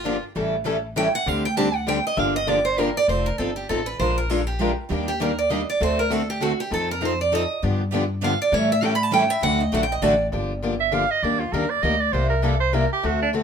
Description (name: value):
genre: acoustic string swing (jazz manouche)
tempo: 199 BPM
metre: 3/4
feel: swing 57% on 8ths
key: G minor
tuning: A4 = 439 Hz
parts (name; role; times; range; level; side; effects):
- picked steel-string acoustic guitar; melody; 0.0-10.3 s; F4 to B5; -23 LUFS; right 3 dB; none
- picked steel-string acoustic guitar; accompaniment; 0.0-13.4 s; C3 to Bb4; -25 LUFS; left 2 dB; none
- picked steel-string acoustic guitar; accompaniment; 0.0-10.1 s; D3 to Bb4; -30 LUFS; right 5 dB; none
- upright bass; bass; 0.0-13.4 s; F1 to A2; -27 LUFS; left 1 dB; none
- bright soprano saxophone; second line; 10.8-13.3 s; D4 to F5; -22 LUFS; right 5 dB; none
room: moderate studio reverb, RT60 0.6 s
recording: minimal, uncompressed stereo recording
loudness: -20 LUFS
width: side -7 dB against mid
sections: 0.0-3.1 A section; 3.1-10.3 A section; 10.3-13.4 A section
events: steel-string acoustic guitar solo 0.0-10.3; soprano saxophone solo 10.3-13.4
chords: 0.4 A7; 1.3 D7sus4; 2.2 Gm7; 3.1 F7; 4.0 Bb7; 4.9 Ebmaj7; 5.8 D7; 6.7 F7; 7.6 G7; 8.5 A7; 9.4 D; 10.3 Gm7; 11.2 Ebmaj7; 12.1 C7